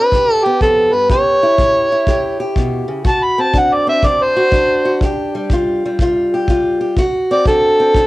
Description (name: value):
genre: acoustic country blues, solo or duo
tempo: 123 BPM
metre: 4/4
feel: swing 66% on 8ths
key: D mixolydian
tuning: A4 = 440 Hz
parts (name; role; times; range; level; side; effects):
- overdriven harmonica; melody; 0.0-8.1 s; G4 to B5; -12 LUFS; equal; cassette tape
- fingerpicked old ladder-braced acoustic guitar; accompaniment; 0.0-8.1 s; D2 to G4; -18 LUFS; equal; cassette tape
- kick drum; drums; 0.1-8.1 s; none; -18 LUFS; equal; none
room: studio reverb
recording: home recording on cassette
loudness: -12 LUFS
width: side -18 dB against mid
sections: 0.0-3.1 A section; 3.1-8.1 B section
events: harmonica solo 3.1-8.1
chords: 0.1 G7; 1.1 A7; 3.1 D7; 5.0 Fsus2/G; 7.0 D7